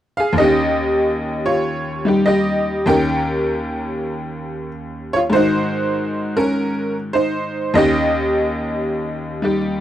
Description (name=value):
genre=solo jazz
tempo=98 BPM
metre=4/4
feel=swing 69% on 8ths, rubato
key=Eb mixolydian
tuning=A4 = 439 Hz
part: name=tack piano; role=solo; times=0.2-9.8 s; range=Eb2 to G5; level=-17 LUFS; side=equal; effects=none
room=light reverb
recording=dark, warm production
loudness=-16 LUFS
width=side -12 dB against mid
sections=0.4-9.8 A section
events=none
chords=0.4 Eb7; 5.3 Ab7; 7.8 Eb7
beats=| 0.38 1.01 1.64 2.25 | 2.88 3.50 4.11 4.71 | 5.32 5.93 6.54 7.16 | 7.77 8.38 9.00 9.63